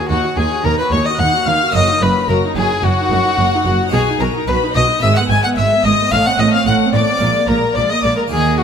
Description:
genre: classical, baroque-style concerto movement with solo episodes.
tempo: 110 BPM.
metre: 4/4.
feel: straight.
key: Eb minor.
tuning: A4 = 440 Hz.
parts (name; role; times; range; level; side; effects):
warm violin; melody; 0.0-8.6 s; Gb4 to G#5; -18 LUFS; left 2 dB; none.
rich chamber violin section; second line; 0.0-8.6 s; Gb4 to G#5; -21 LUFS; left 4 dB; none.
dark chamber viola section; accompaniment; 0.0-8.6 s; G#3 to Gb4; -23 LUFS; right 4 dB; none.
harpsichord; accompaniment; 0.0-8.6 s; Eb2 to B4; -24 LUFS; right 3 dB; none.
warm chamber violin section; melody; 0.1-8.6 s; Gb5 to G#6; -22 LUFS; left 4 dB; none.
dark chamber cello section; bass; 0.1-8.6 s; Eb2 to Eb3; -21 LUFS; right 3 dB; none.
rich chamber double bass section; bass; 0.1-8.6 s; Gb1 to Eb2; -21 LUFS; right 3 dB; none.
room: light reverb.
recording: close, detailed microphones.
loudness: -12 LUFS.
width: side -7 dB against mid.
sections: 0.0-8.6 A section.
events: none.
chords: 0.0 Ebm; 1.7 Ebm/Gb; 3.9 B; 5.0 E/G#; 6.1 Adim; 7.2 Bb5.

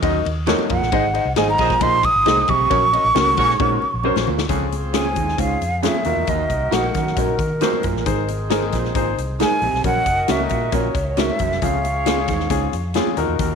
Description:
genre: uptempo 1960s-style soul.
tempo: 135 BPM.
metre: 4/4.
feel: straight.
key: Db major.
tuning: A4 = 441 Hz.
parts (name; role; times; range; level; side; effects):
warm concert grand piano; accompaniment; 0.0-13.6 s; Db4 to Eb5; -25 LUFS; left 12 dB; none.
breathy baritone saxophone; riff; 0.0-13.6 s; Eb2 to C3; -26 LUFS; right 15 dB; none.
vintage muted fingered electric bass; bass; 0.0-13.6 s; F1 to Eb3; -25 LUFS; equal; none.
swinging big-band drum kit; drums; 0.0-13.5 s; hi-hat, kick drum, ride cymbal, snare drum; -25 LUFS; left 4 dB; none.
congas; percussion; 0.0-13.5 s; none; -32 LUFS; left 14 dB; none.
electric guitar through a small old amp; stabs; 0.5-13.1 s; Db4 to C5; -24 LUFS; right 14 dB; phaser.
breathy mellow silver concert flute; melody; 0.7-12.7 s; Bb4 to Eb6; -20 LUFS; right 2 dB; tape echo.
mellow horn section; second line; 1.6-13.6 s; Bb3 to F5; -29 LUFS; left 1 dB; none.
room: studio ambience.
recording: 1960s-style stereo with parts hard left and right.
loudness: -16 LUFS.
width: side -6 dB against mid.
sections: 0.0-4.5 A section; 4.5-13.6 B section.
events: drum fill 3.6-4.5; flute solo 4.5-13.6.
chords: 0.0 Ebm; 0.9 Ab; 2.7 Gb/Bb; 4.5 Db; 6.1 Ebm; 8.1 Ab; 9.8 Gb; 11.6 Db.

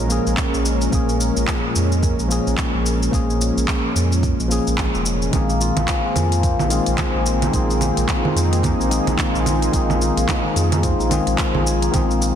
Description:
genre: organic downtempo.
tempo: 109 BPM.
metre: 4/4.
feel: swing 59% on 16ths.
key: unclear.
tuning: A4 = 438 Hz.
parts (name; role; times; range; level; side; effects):
tine electric piano; accompaniment; 0.0-12.4 s; Eb3 to Ab4; -24 LUFS; left 4 dB; sidechain pumping, ping-pong delay.
warm analog pad; sustained chords; 0.0-12.4 s; Bb2 to Bb4; -25 LUFS; right 2 dB; chorus, sidechain pumping.
warm sub bass; bass; 0.0-12.3 s; F1 to F2; -21 LUFS; right 1 dB; sidechain pumping.
organic electronic drum kit; drums; 0.1-12.3 s; congas, handclaps, hi-hat, shaker; -24 LUFS; right 2 dB; none.
electronic kick drum; drums; 0.4-12.1 s; none; -23 LUFS; right 1 dB; none.
santur; arpeggios; 5.3-12.4 s; F3 to Bb4; -24 LUFS; left 4 dB; ping-pong delay.
room: light reverb.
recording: dense, heavily limited modern master.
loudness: -16 LUFS.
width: side -9 dB against mid.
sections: 0.0-12.4 A section.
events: none.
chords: 0.0 Bbm7; 5.3 Ab/Bb.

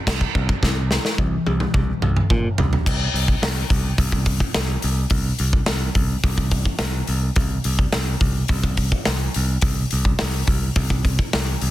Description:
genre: heavy metal.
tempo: 106 BPM.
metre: 4/4.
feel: straight.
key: unclear.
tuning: A4 = 439 Hz.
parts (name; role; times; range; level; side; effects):
modern bright picked electric bass; bass; 0.1-11.7 s; C2 to Bb2; -22 LUFS; equal; none.
big rock drum kit; drums; 0.1-11.7 s; china cymbal, crash cymbal, hi-hat, kick drum, snare drum, toms; -20 LUFS; equal; none.
room: little or no reverb.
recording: dense, heavily limited modern master.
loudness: -18 LUFS.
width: side -15 dB against mid.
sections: 0.0-2.9 A section; 2.9-11.7 B section.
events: drum fill 0.6-2.9.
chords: none.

